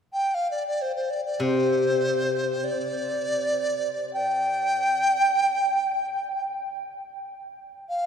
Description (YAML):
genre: chinese traditional, Chinese chamber ensemble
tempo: free time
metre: none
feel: none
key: unclear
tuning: A4 = 440 Hz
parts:
  - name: mellow hollow dizi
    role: melody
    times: 0.1-8.1 s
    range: C5 to G5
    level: -24 LUFS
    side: equal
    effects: none
  - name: steel-string zither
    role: accompaniment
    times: 1.4-4.8 s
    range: C3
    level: -27 LUFS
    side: left 2 dB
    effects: none
room: wet cathedral reverb, RT60 6.1 s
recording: recorded in a church or concert hall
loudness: -23 LUFS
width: side -7 dB against mid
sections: 0.0-8.1 A section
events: none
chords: none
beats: free time